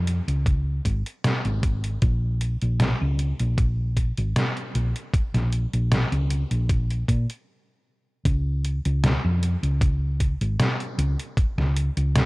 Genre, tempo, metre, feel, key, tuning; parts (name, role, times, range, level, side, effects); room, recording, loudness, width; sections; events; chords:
vaporwave; 77 BPM; 4/4; straight; Db major; A4 = 440 Hz
hollow-body short-scale fingered electric bass; bass; 0.0-12.3 s; Ab1 to Bb2; -23 LUFS; equal
detuned 8-bit digital drum machine; drums; 0.1-12.3 s; hi-hat, snare drum; -26 LUFS; equal
electronic kick drum; drums; 0.5-11.5 s; -22 LUFS; equal
light reverb; cassette tape; -21 LUFS; side -23 dB against mid
0.0-8.3 A section; 8.3-12.3 B section
stop 7.5-8.3